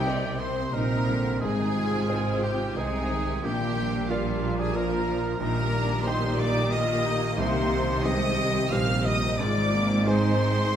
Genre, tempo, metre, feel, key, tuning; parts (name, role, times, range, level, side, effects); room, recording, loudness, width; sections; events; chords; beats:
cinematic, emotional film score for orchestra; 90 BPM; 3/4; rubato; C minor; A4 = 440 Hz
rich studio violin section; melody; 0.0-10.8 s; F5 to F6; -35 LUFS; left 1 dB
clear studio violin section; second line; 0.0-10.8 s; F4 to F5; -35 LUFS; left 1 dB
small flute group; second line; 0.0-10.8 s; F4 to F5; -35 LUFS; left 4 dB
warm cor anglais; second line; 0.0-10.8 s; F4 to F5; -34 LUFS; right 3 dB
dark studio viola section; accompaniment; 0.0-10.8 s; D3 to D5; -32 LUFS; equal
warm grand piano; accompaniment; 0.0-10.8 s; Ab1 to G5; -31 LUFS; equal
mellow French horn section; sustained chords; 0.0-10.8 s; C3 to G4; -34 LUFS; left 3 dB
concert harp; arpeggios; 0.0-10.8 s; Ab2 to Eb6; -35 LUFS; left 6 dB
rich studio cello section; bass; 0.0-10.8 s; Ab2 to C3; -31 LUFS; right 3 dB
warm studio double bass section; bass; 0.0-10.8 s; Ab1 to C2; -31 LUFS; right 4 dB
timpani; percussion; 0.0-0.4, 7.4-8.3 s; barely audible
moderate scoring stage reverb, RT60 1.6 s; close, detailed microphones; -23 LUFS; side -9 dB against mid
0.0-10.8 A section
0.0 Cm; 1.4 Ab; 3.4 Bb; 5.4 Eb/Bb; 7.4 Cm; 9.4 Ab
0.07 0.74 | 1.42 2.10 2.77 | 3.43 4.10 4.75 | 5.40 6.06 6.72 | 7.38 8.04 8.71 | 9.39 10.07 10.74